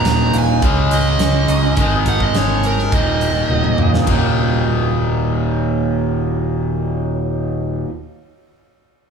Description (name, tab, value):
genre	quiet-loud alternative rock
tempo	104 BPM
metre	4/4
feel	straight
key	Eb minor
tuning	A4 = 439 Hz
part	smooth overdriven lead guitar	melody	0.0-4.0 s	Bb4 to Bb5	-22 LUFS	right 4 dB	none
part	electric guitar through a small old amp	arpeggios	0.0-7.9 s	Eb2 to Eb4	-25 LUFS	right 6 dB	phaser, tape echo
part	raw garage guitar	riff	0.0-7.9 s	Eb2 to Db4	-19 LUFS	left 2 dB	overdrive
part	growling picked electric bass	bass	0.1-7.8 s	Eb1 to Db2	-19 LUFS	right 2 dB	overdrive
part	huge arena drum kit	drums	0.1-4.2 s	hi-hat, kick drum, ride cymbal, snare drum, toms	-20 LUFS	equal	none
room	light reverb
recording	small room reverb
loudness	-14 LUFS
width	side -6 dB against mid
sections	0.0-4.1 A section; 4.1-6.4 B section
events	lead electric guitar solo 0.0-4.1; drum fill 3.5-4.1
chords	0.0 Ebm; 0.6 Dbsus2; 1.8 Absus4; 2.9 Ebm